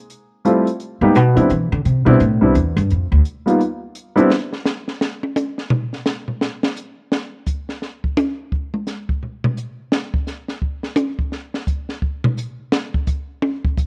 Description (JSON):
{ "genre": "jazz piano trio", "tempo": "171 BPM", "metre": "4/4", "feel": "swing 63% on 8ths", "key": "C major", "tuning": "A4 = 440 Hz", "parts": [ { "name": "compact cocktail drum kit", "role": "drums", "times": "0.1-13.9 s", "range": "hi-hat, kick drum, snare drum, toms", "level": "-23 LUFS", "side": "equal", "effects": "none" }, { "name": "warm baby grand piano", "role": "melody", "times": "0.4-4.3 s", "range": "G3 to G4", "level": "-17 LUFS", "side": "equal", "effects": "none" }, { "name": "upright bass", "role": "bass", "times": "1.0-3.2 s", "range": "C2 to E3", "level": "-17 LUFS", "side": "equal", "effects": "none" } ], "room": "light reverb", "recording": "worn, warbling old tape, cassette tape, warbly pitch drift", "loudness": "-20 LUFS", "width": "mono", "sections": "0.0-4.3 A section; 4.3-13.9 A section", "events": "upright bass solo 0.0-4.3; drum solo 4.3-13.9", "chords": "0.1 G13sus4; 0.8 G; 1.5 Cmaj7; 2.9 Dm; 3.6 N.C.", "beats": "| 0.09 0.44 0.80 1.15 | 1.50 1.85 2.20 2.55 | 2.90 3.25 3.60 3.95 | 4.30 4.65 5.00 5.36 | 5.71 6.06 6.41 6.76 | 7.11 7.46 7.81 8.16 | 8.51 8.87 9.22 9.57 | 9.92 10.27 10.62 10.97 | 11.32 11.67 12.02 12.37 | 12.72 13.07 13.42 13.77" }